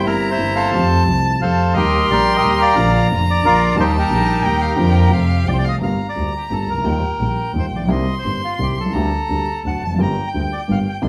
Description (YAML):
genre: tango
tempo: 174 BPM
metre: 3/4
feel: rubato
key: G minor from 5.8 s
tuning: A4 = 441 Hz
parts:
  - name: bandoneon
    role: melody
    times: 0.0-11.0 s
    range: Eb4 to Bb5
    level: -22 LUFS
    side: equal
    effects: slapback echo
  - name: warm violin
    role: second line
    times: 0.0-11.1 s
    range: F5 to C6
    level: -26 LUFS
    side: equal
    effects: none
  - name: warm concert grand piano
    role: accompaniment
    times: 0.0-11.1 s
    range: F1 to G4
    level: -22 LUFS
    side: equal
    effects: none
  - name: clear double bass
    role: bass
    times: 0.0-11.1 s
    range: F1 to F2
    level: -24 LUFS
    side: equal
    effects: none
  - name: clear studio string section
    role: stabs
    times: 1.8-5.8 s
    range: A3 to G4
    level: -34 LUFS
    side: equal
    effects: none
room: moderate studio reverb, RT60 0.7 s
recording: band playing live in one room, vinyl crackle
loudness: -17 LUFS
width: mono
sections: 0.0-5.8 A section; 5.8-11.1 B section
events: none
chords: 0.0 C7/G; 0.7 Fadd9; 1.8 Eb; 2.8 Bb; 3.8 Eb; 4.8 Bb/F; 5.1 F; 5.8 Gm7; 6.9 Ebadd9; 7.9 Cm7; 8.9 Gm/D; 9.6 D; 10.0 Gm7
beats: 0.07 0.40 | 0.74 1.07 1.41 | 1.76 2.10 2.43 | 2.77 3.10 3.43 | 3.77 4.10 4.44 | 4.78 5.12 5.47 | 5.82 6.17 6.52 | 6.86 7.21 7.55 | 7.90 8.25 8.59 | 8.94 9.29 9.65 | 10.00 10.36 10.70 | 11.05